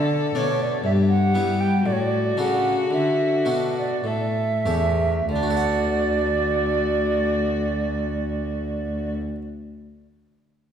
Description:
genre	classical, baroque-style sonata movement with continuo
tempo	47-63 BPM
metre	3/4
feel	straight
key	D major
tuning	A4 = 441 Hz
part	dark violin	melody	0.0-9.1 s	F#4 to A4	-27 LUFS	left 6 dB	none
part	concert flute	second line	0.0-9.2 s	C#5 to G5	-25 LUFS	right 5 dB	none
part	harpsichord	accompaniment	0.0-9.4 s	E2 to F#5	-26 LUFS	left 2 dB	none
part	warm cello	bass	0.0-9.1 s	D2 to G3	-26 LUFS	equal	none
room	wet recital hall reverb, RT60 1.7 s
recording	heard from further back in the room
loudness	-20 LUFS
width	side -8 dB against mid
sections	0.0-5.3 A section; 5.3-9.0 B section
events	slowing down 0.0-5.3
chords	0.0 D5; 0.8 Em/G; 1.9 D/A; 4.0 A7; 5.3 D

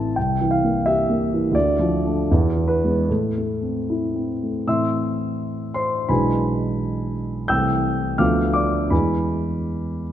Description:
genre	classical, romantic character piece for solo piano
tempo	74-89 BPM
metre	2/4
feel	rubato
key	A minor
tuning	A4 = 437 Hz
part	dark grand piano	solo	0.0-10.1 s	A1 to G6	-19 LUFS	equal	none
room	moderate concert hall reverb, RT60 1.8 s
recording	none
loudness	-19 LUFS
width	side -11 dB against mid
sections	0.0-4.7 A section; 4.7-10.1 A section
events	none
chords	0.2 C7; 1.5 Dm; 2.3 E7; 3.1 Am; 6.1 E7/B; 7.5 Am/C; 8.2 Bm7b5/D; 8.9 E

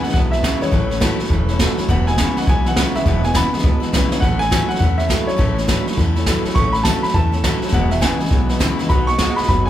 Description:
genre	rockabilly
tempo	206 BPM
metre	4/4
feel	swing 63% on 8ths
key	E major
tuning	A4 = 440 Hz
part	warm upright piano	melody	0.0-9.7 s	C#5 to C#6	-22 LUFS	equal	none
part	picked steel-string acoustic guitar	accompaniment	0.0-9.7 s	E2 to F#4	-23 LUFS	left 4 dB	none
part	electric guitar through a small old amp	riff	0.0-9.7 s	E2 to G#3	-24 LUFS	right 4 dB	spring reverb
part	upright bass	bass	0.0-9.7 s	E1 to E2	-21 LUFS	equal	none
part	jazz brush drum kit	drums	0.0-9.7 s	hi-hat, kick drum, snare drum	-19 LUFS	equal	none
room	light reverb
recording	band playing live in one room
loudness	-15 LUFS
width	side -12 dB against mid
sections	0.0-9.7 A section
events	drum fill 4.1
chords	0.0 E; 0.7 A; 1.9 E; 4.2 A; 7.7 E; 8.9 B

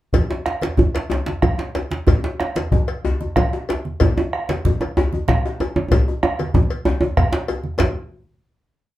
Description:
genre	west african traditional, West African drum ensemble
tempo	126 BPM (dotted quarters)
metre	12/8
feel	straight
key	none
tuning	none
part	bombo	percussion	0.1-7.9 s	none	-21 LUFS	equal	none
part	congas	percussion	0.1-7.9 s	none	-24 LUFS	right 1 dB	none
part	cowbell	percussion	0.1-7.9 s	none	-28 LUFS	left 4 dB	none
part	djembe	percussion	0.1-7.9 s	none	-24 LUFS	left 3 dB	none
part	djembe	percussion	0.1-7.9 s	none	-21 LUFS	right 2 dB	none
room	wet studio ambience, RT60 0.5 s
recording	heard from further back in the room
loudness	-18 LUFS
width	side -14 dB against mid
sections	0.1-7.8 A section; 7.8-9.0 final hit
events	speeding up 0.1-9.0; drum fill 5.9-7.8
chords	none

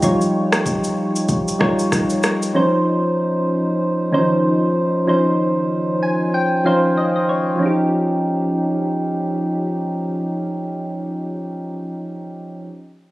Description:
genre	afrobeats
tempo	95 BPM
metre	4/4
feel	swing 58% on 16ths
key	Eb mixolydian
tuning	A4 = 439 Hz
part	soft electric-piano-like synth keys	accompaniment	0.0-12.7 s	Eb3 to Ab5	-17 LUFS	equal	chorus
part	afro-pop drum kit	drums	0.0-2.5 s	kick drum, rim click, shaker	-21 LUFS	equal	vintage 12-bit sampler grit
room	light reverb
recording	recorded on a phone in the room, club ambience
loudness	-17 LUFS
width	side -18 dB against mid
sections	0.0-7.6 A section; 7.6-10.1 B section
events	synth keys fill 5.7-7.6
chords	0.0 Eb9; 2.6 Dbmaj9; 7.6 Eb9

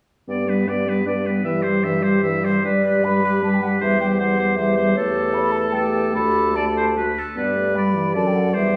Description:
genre	quick classical-period movement for wind quintet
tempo	154 BPM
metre	3/4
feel	rubato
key	G major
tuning	A4 = 440 Hz
part	clear oboe	second line	0.3-8.8 s	A4 to E5	-27 LUFS	equal	none
part	clear clarinet	accompaniment	0.3-8.8 s	B3 to A4	-30 LUFS	equal	none
part	mellow French horn	accompaniment	0.3-8.8 s	E3 to B3	-25 LUFS	equal	none
part	dark bassoon	bass	0.3-8.8 s	D2 to G2	-26 LUFS	equal	none
part	mellow hollow concert flute	melody	2.6-8.8 s	C#5 to B5	-26 LUFS	equal	none
room	wet recital hall reverb, RT60 1.5 s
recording	recorded in a church or concert hall, studio reverb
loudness	-20 LUFS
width	mono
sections	0.3-2.6 A section; 2.6-8.8 B section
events	none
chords	0.3 G; 1.4 C/G; 2.6 G; 3.8 C/E; 5.0 A7/E; 6.1 Dsus4; 7.0 D; 7.4 G

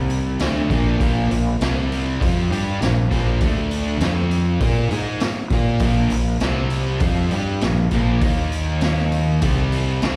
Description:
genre	classic rock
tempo	100 BPM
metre	4/4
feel	straight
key	Bb major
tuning	A4 = 441 Hz
part	overdriven electric guitar	riff	0.0-10.2 s	Bb2 to Bb4	-25 LUFS	equal	spring reverb, slapback echo
part	fuzz fingered electric bass	bass	0.0-10.2 s	Bb1 to Bb2	-23 LUFS	equal	overdrive
part	raw garage drum kit	drums	0.1-10.2 s	hi-hat, kick drum, snare drum	-26 LUFS	equal	none
room	little or no reverb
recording	live gig heard through the venue's PA, recital hall reverb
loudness	-20 LUFS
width	mono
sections	0.0-10.2 A section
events	none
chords	0.4 Bb; 1.6 C5; 2.2 Bb; 3.4 D5; 4.0 F5; 4.6 Bb5; 6.4 C5; 7.0 Bb; 8.2 Eb5; 9.4 C5

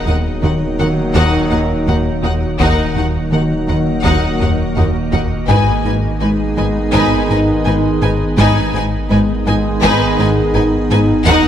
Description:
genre	cinematic, hybrid orchestral and electronic film score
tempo	83 BPM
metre	4/4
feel	straight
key	G# minor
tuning	A4 = 441 Hz
part	rich symphonic violin section	melody	0.0-11.5 s	F#5 to G#5	-22 LUFS	left 4 dB	none
part	warm symphonic violin section	second line	0.0-11.5 s	A#4 to B4	-25 LUFS	left 2 dB	none
part	warm symphonic viola section	accompaniment	0.0-11.5 s	D#4	-23 LUFS	equal	none
part	organ-like drone	sustained chords	0.0-11.5 s	D#3 to D#5	-22 LUFS	right 1 dB	ensemble chorus, built-in reverb
part	warm French horn section	sustained chords	0.0-11.5 s	A#3 to D#4	-22 LUFS	equal	none
part	warm trombone section	sustained chords	0.0-11.5 s	D#3 to G#3	-22 LUFS	right 2 dB	none
part	saturated sub bass	bass	0.0-11.5 s	D#1 to G#1	-24 LUFS	equal	none
part	rubbery square bass	riff	0.1-11.5 s	D#2 to G#3	-20 LUFS	left 2 dB	none
part	rich symphonic cello section	bass	0.1-11.3 s	D#2 to G#2	-22 LUFS	right 2 dB	none
part	warm symphonic double bass section	bass	0.1-11.3 s	G#1 to D#2	-22 LUFS	right 2 dB	none
part	taiko ensemble	drums	1.2-11.5 s	none	-22 LUFS	equal	none
room	moderate scoring stage reverb, RT60 1.6 s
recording	none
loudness	-12 LUFS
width	side -10 dB against mid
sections	0.0-11.5 A section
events	drum fill 4.4-5.5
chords	0.0 D#m; 5.5 G#m

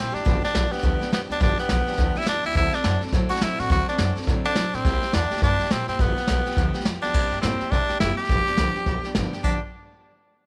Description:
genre	rockabilly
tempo	209 BPM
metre	4/4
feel	swing 60% on 8ths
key	G mixolydian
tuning	A4 = 440 Hz
part	raspy tenor saxophone	melody	0.0-9.6 s	B3 to G4	-28 LUFS	equal	none
part	picked steel-string acoustic guitar	accompaniment	0.0-9.6 s	G2 to A4	-32 LUFS	equal	none
part	upright bass	bass	0.0-9.6 s	F#1 to C3	-30 LUFS	equal	none
part	vintage brush drum kit	drums	0.1-9.5 s	crash cymbal, hi-hat, kick drum, snare drum	-27 LUFS	equal	none
room	studio reverb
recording	none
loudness	-23 LUFS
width	mono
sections	0.0-7.1 A section; 7.1-9.4 B section; 9.4-10.5 C section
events	none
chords	0.3 G7; 2.6 D7; 4.8 C7; 6.0 G7; 7.1 C7; 8.3 G7

